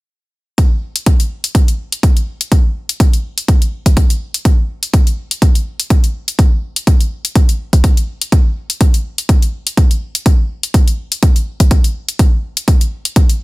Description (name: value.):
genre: bass house.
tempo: 124 BPM.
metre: 4/4.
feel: swing 55% on 16ths.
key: none.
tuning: none.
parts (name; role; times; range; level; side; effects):
electronic hi-hat; drums; 0.6-13.4 s; none; -19 LUFS; left 2 dB; overdrive, small room ambience.
electronic kick drum; drums; 0.6-13.3 s; none; -10 LUFS; equal; overdrive, small room ambience.
room: little or no reverb.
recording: dense, heavily limited modern master.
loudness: -12 LUFS.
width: side -21 dB against mid.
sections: 0.6-13.4 A section.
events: none.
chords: none.